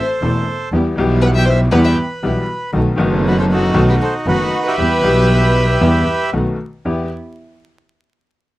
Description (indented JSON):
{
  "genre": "tango",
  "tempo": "117 BPM",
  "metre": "4/4",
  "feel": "rubato",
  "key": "E harmonic minor",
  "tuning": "A4 = 439 Hz",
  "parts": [
    { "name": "bandoneon", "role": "melody", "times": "0.0-6.3 s", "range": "D#4 to G5", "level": "-19 LUFS", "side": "right 2 dB", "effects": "none" },
    { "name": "warm violin", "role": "second line", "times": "0.0-6.3 s", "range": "F#4 to E5", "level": "-21 LUFS", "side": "left 2 dB", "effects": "none" },
    { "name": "bright upright piano", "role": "accompaniment", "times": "0.2-7.1 s", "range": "E1 to A4", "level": "-19 LUFS", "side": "left 2 dB", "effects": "none" },
    { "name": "dark chamber string section", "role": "stabs", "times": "0.2-7.1 s", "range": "B3 to A4", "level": "-25 LUFS", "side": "right 2 dB", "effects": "none" },
    { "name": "bright double bass", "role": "bass", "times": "0.2-7.1 s", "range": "E1 to E2", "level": "-16 LUFS", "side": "equal", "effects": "none" }
  ],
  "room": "light reverb",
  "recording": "dry, close 1970s-style studio recording, vinyl crackle",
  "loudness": "-13 LUFS",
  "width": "side -17 dB against mid",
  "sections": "0.0-6.9 A section; 6.9-8.6 B section",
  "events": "none",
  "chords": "0.0 Am; 0.7 Em; 2.7 B7; 4.8 Em; 6.3 B7; 6.9 Em",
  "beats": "0.21 | 0.72 1.22 1.73 2.23 | 2.74 3.24 3.76 4.27 | 4.78 5.30 5.81 6.33 | 6.86"
}